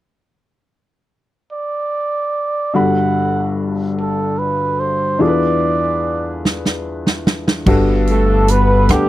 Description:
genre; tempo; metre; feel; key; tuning
slow gospel; 49 BPM (dotted quarters); 6/8; straight; G major; A4 = 440 Hz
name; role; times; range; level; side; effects
breathy trumpet; melody; 1.5-9.1 s; G4 to F#5; -18 LUFS; right 3 dB; none
clear baby grand piano; accompaniment; 2.7-9.1 s; G1 to B5; -17 LUFS; left 2 dB; none
natural country drum kit; drums; 6.5-9.1 s; crash cymbal, hi-hat, kick drum, rim click, snare drum; -18 LUFS; right 1 dB; none
upright bass; bass; 7.7-9.1 s; G1 to D2; -15 LUFS; equal; none
mellow horn section; melody; 8.1-9.1 s; G3 to B4; -19 LUFS; left 3 dB; none
room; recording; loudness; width
little or no reverb; dry, close 1970s-style studio recording; -14 LUFS; side -15 dB against mid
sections
0.3-2.7 A section; 2.7-7.7 B section; 7.7-9.1 C section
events
drum fill 6.4-7.7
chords
0.3 N.C.; 2.7 Gmaj9; 5.2 E7b9; 7.7 Gmaj9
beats
| 0.28 1.51 | 2.74 3.98 | 5.21 6.43 | 7.67 8.89

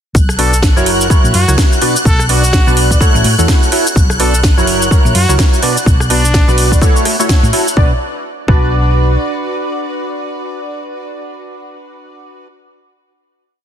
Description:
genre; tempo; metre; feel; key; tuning
piano house; 126 BPM; 4/4; swing 59% on 16ths; B minor; A4 = 441 Hz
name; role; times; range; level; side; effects
string machine, violins; sustained chords; 0.1-7.8 s; F#6; -21 LUFS; equal; ensemble chorus, sidechain pumping
hollow-body short-scale fingered electric bass; bass; 0.1-9.2 s; F#1 to A2; -14 LUFS; equal; sidechain pumping
electronic kick drum; drums; 0.1-8.6 s; none; -11 LUFS; equal; none
house drum kit; drums; 0.2-7.8 s; cabasa, hi-hat, rim click, snare drum; -17 LUFS; right 1 dB; none
clear trumpet; melody; 0.4-6.5 s; D4 to A4; -22 LUFS; equal; vintage 12-bit sampler grit, ping-pong delay
percussive organ stab; riff; 0.4-12.5 s; B2 to D5; -16 LUFS; equal; ensemble chorus, sidechain pumping, ping-pong delay
room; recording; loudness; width
light reverb, digital ambience; dense, heavily limited modern master; -9 LUFS; side -9 dB against mid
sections
0.1-7.8 drop; 7.8-11.6 final chord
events
drop 0.1-7.8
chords
0.1 Bm; 0.9 F#7; 1.8 Bm; 3.0 A6; 4.0 Bm; 4.7 F#7; 5.6 Bm; 6.8 A6; 7.8 Bm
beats
| 0.15 0.62 1.10 1.58 | 2.05 2.53 3.01 3.48 | 3.96 4.43 4.91 5.39 | 5.86 6.34 6.82 7.29 | 7.77 8.24 8.72 9.20 | 9.67 10.15 10.62 11.10

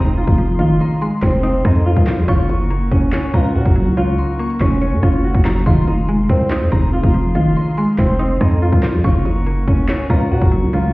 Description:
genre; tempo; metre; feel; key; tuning
hip hop, drill; 142 BPM; 4/4; half-time; F phrygian; A4 = 440 Hz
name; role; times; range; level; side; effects
flamenco guitar; melody; 0.0-10.9 s; C4 to Gb4; -22 LUFS; equal; low-pass filter, tape echo
soft synth bell; second line; 0.0-10.7 s; Bb5 to Db6; -31 LUFS; equal; chorus, tape echo
mallet-like synth pluck; accompaniment; 0.0-10.9 s; Db3 to Db5; -20 LUFS; right 1 dB; chorus, low-pass filter
warm woodwind section; sustained chords; 0.0-10.9 s; Db4 to Db6; -31 LUFS; left 2 dB; none
growling 808-style bass; bass; 0.0-10.9 s; F1 to Bb2; -17 LUFS; equal; none
impact; sound effects; 0.0-0.6 s; none; barely audible; none; none
drill drum kit; drums; 0.1-10.8 s; handclaps, hi-hat, kick drum, rim click, snare drum; -16 LUFS; equal; none
room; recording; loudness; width
digital ambience; heard muffled through a wall, stone room reverb, EQ; -13 LUFS; side -21 dB against mid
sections
0.0-10.9 A section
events
impact 0.0-0.6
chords
0.0 Fm7; 2.3 Gb; 5.7 Fm7; 9.0 Gb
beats
0.17 | 0.59 1.01 1.44 1.86 | 2.28 2.70 3.13 3.55 | 3.97 4.39 4.82 5.24 | 5.66 6.08 6.51 6.93 | 7.35 7.78 8.20 8.62 | 9.04 9.46 9.89 10.31 | 10.73

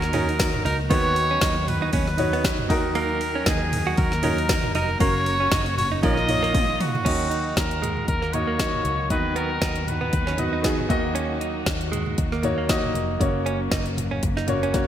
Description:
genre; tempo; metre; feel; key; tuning
piano-driven pop; 117 BPM; 4/4; swing 56% on 16ths; Eb minor; A4 = 441 Hz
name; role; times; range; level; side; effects
clear trumpet; melody; 0.0-10.9 s; Gb4 to Eb5; -26 LUFS; equal; none
clear grand piano; accompaniment; 0.0-14.9 s; Bb2 to Eb5; -27 LUFS; equal; none
warm studio string section; sustained chords; 0.0-14.9 s; Db3 to Gb4; -34 LUFS; left 1 dB; none
vintage muted fingered electric bass; bass; 0.0-14.9 s; F1 to Eb2; -28 LUFS; equal; none
deep house drum kit; drums; 0.0-14.9 s; crash cymbal, hi-hat, kick drum, ride cymbal, snare drum, toms; -26 LUFS; equal; gated reverb
direct-recorded clean electric guitar; riff; 0.1-14.7 s; Ab3 to Gb4; -30 LUFS; right 6 dB; none
room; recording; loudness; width
moderate lush hall reverb, RT60 1.7 s, digital ambience; bright 1980s-style digital production; -20 LUFS; side -10 dB against mid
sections
0.0-7.1 A section; 7.1-14.9 B section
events
drum fill 6.5-7.1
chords
0.0 Ebm; 0.9 B/D#; 2.7 Ebm; 5.0 Gb; 6.0 Bbsus4; 7.1 Ebm; 9.1 B/D#; 10.9 Ebm; 13.2 Gb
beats
0.40 | 0.91 1.42 1.93 2.44 | 2.96 3.47 3.98 4.49 | 5.01 5.52 6.03 6.54 | 7.05 7.57 8.08 8.59 | 9.11 9.62 10.13 10.64 | 11.16 11.67 12.18 12.69 | 13.21 13.72 14.23 14.74

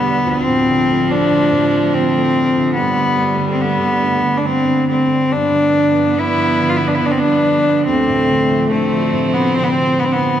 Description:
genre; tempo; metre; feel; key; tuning
celtic folk, Celtic slow air; 71 BPM; 3/4; rubato; D dorian; A4 = 439 Hz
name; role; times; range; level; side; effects
rich cello; melody; 0.0-10.4 s; A3 to F4; -15 LUFS; left 1 dB; none
warm viola; second line; 0.0-10.4 s; F3 to C4; -21 LUFS; right 2 dB; none
felt-muted upright piano; accompaniment; 0.0-10.4 s; D2 to B3; -22 LUFS; right 4 dB; none
clear symphonic string section; sustained chords; 0.0-10.4 s; D2 to B3; -26 LUFS; equal; none
room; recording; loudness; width
wet cathedral reverb, RT60 4.8 s; none; -13 LUFS; side -10 dB against mid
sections
0.0-10.4 A section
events
none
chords
0.3 Dm7; 2.8 Gadd9; 5.3 G7; 7.9 Dm7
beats
| 0.26 1.10 1.93 | 2.75 3.58 4.44 | 5.31 6.17 7.03 | 7.88 8.72 9.56

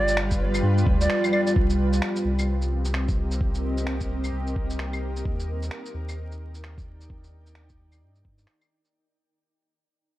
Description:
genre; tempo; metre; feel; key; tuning
future garage; 130 BPM; 4/4; swing 61% on 16ths; C minor; A4 = 443 Hz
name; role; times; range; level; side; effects
reedy concert flute; melody; 0.0-1.5 s; D5; -27 LUFS; right 1 dB; analog delay
granular cloud pad; sustained chords; 0.0-8.9 s; G3 to G5; -28 LUFS; equal; built-in reverb, vintage 12-bit sampler grit, sidechain pumping
warm sub bass; bass; 0.0-8.5 s; G1 to G2; -26 LUFS; equal; sidechain pumping
electronic shaker, finger snaps and claves; drums; 0.1-8.9 s; none; -32 LUFS; equal; none
electronic kick drum; drums; 0.3-8.4 s; none; -25 LUFS; equal; none
room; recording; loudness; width
light reverb, digital ambience; vinyl crackle; -22 LUFS; side -15 dB against mid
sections
0.0-1.6 A section; 1.6-8.9 B section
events
band accent 1.1; fade-out 1.6-8.9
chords
0.0 G7; 1.6 Cm7; 5.2 Ebmaj7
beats
0.17 0.63 1.09 | 1.55 2.02 2.48 2.94 | 3.40 3.86 4.32 4.78 | 5.25 5.71 6.17 6.63 | 7.09 7.55 8.02 8.48

